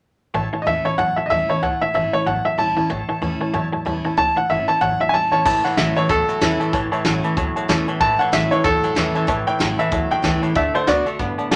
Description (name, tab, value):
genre	rockabilly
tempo	188 BPM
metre	4/4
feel	swing 59% on 8ths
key	A mixolydian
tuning	A4 = 435 Hz
part	honky-tonk upright piano	accompaniment	0.3-11.6 s	C#5 to B5	-30 LUFS	equal	none
part	picked steel-string acoustic guitar	accompaniment	0.3-11.6 s	E2 to F#4	-28 LUFS	equal	none
part	clean electric guitar	riff	0.3-11.6 s	A2 to B3	-28 LUFS	equal	none
part	upright bass	bass	0.3-11.6 s	G1 to A2	-33 LUFS	equal	none
part	bright upright piano	melody	0.6-11.1 s	F#4 to A5	-21 LUFS	equal	none
part	soft brush drum kit	drums	5.5-11.6 s	crash cymbal, hi-hat, kick drum, snare drum	-26 LUFS	equal	none
room	moderate small room ambience, RT60 0.5 s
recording	none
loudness	-19 LUFS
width	mono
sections	0.3-5.5 A section; 5.5-11.6 B section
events	none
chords	0.3 A; 10.6 D